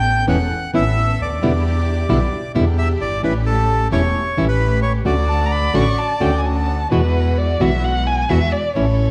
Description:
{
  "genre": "tango",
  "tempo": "131 BPM",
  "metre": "4/4",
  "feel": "rubato",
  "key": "unclear",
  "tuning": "A4 = 441 Hz",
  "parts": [
    { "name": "bandoneon", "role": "melody", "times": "0.0-6.4 s", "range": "A4 to G5", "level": "-24 LUFS", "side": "equal", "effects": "analog delay" },
    { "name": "warm symphonic string section", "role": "stabs", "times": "0.0-9.1 s", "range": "G#3 to A4", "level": "-30 LUFS", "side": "equal", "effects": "none" },
    { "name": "clear double bass", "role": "bass", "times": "0.0-9.1 s", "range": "E1 to E2", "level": "-21 LUFS", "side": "equal", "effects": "none" },
    { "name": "nylon-string guitar", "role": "accompaniment", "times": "0.3-8.8 s", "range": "B2 to F#4", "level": "-23 LUFS", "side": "equal", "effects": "none" },
    { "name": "warm violin", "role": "second line", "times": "5.3-9.1 s", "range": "B4 to C#6", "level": "-24 LUFS", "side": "equal", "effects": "none" }
  ],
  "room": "moderate large studio reverb, RT60 1.3 s",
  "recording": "dark, warm production",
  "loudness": "-18 LUFS",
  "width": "mono",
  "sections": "0.0-6.9 A section; 6.9-9.1 B section",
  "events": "violin solo 6.9-9.1",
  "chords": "0.0 Aadd9; 1.4 Em7; 3.2 A7; 5.1 Dmaj7; 6.9 Eadd9"
}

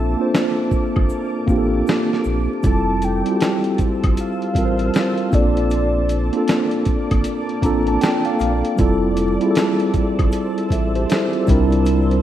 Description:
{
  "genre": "lo-fi hip hop",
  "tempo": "78 BPM",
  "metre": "4/4",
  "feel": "swing 64% on 16ths",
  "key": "unclear",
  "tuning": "A4 = 438 Hz",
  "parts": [
    { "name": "mellow tine electric piano", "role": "accompaniment", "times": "0.0-12.2 s", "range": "G3 to Bb5", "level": "-19 LUFS", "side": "right 1 dB", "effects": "medium stereo tremolo, cassette tape, low-pass filter" },
    { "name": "granular cloud pad", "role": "sustained chords", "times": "0.0-12.2 s", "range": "Bb3 to E6", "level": "-29 LUFS", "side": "right 1 dB", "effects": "built-in reverb, low-pass filter" },
    { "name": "sub bass with octave", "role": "bass", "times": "0.0-12.2 s", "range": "F1 to C2", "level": "-21 LUFS", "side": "equal", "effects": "none" },
    { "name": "dusty soul sampler-style drum kit", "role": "drums", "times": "0.3-12.2 s", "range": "hi-hat, kick drum, snare drum", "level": "-21 LUFS", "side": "equal", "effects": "none" },
    { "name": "egg shaker and woodblock", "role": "percussion", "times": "0.4-12.1 s", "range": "none", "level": "-38 LUFS", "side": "left 6 dB", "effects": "none" },
    { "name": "warm velvety synth lead", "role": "melody", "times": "2.7-6.9 s", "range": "D5 to A5", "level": "-26 LUFS", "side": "equal", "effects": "chorus, low-pass filter" }
  ],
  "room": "light reverb",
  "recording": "rough home demo mix, vinyl crackle",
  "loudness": "-16 LUFS",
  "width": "side -11 dB against mid",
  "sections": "0.0-12.2 A section",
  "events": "break 0.0-2.6; tine electric piano fill 7.3-8.8",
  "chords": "0.0 Bbmaj7; 2.6 Fmaj7; 5.3 Bbmaj7; 8.8 Fmaj7; 11.5 C9"
}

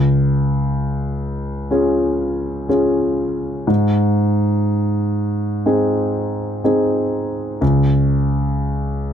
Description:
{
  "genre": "folk",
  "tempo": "61 BPM",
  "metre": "4/4",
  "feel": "straight",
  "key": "Ab major",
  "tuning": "A4 = 440 Hz",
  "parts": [
    { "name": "dark grand piano", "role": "solo", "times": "0.0-9.1 s", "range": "Db2 to Ab4", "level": "-16 LUFS", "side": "equal", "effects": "none" }
  ],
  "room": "little or no reverb",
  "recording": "close, detailed microphones",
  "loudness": "-16 LUFS",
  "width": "side -8 dB against mid",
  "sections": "0.0-9.1 A section",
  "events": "none",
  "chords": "0.0 Db; 3.7 Ab; 7.6 N.C."
}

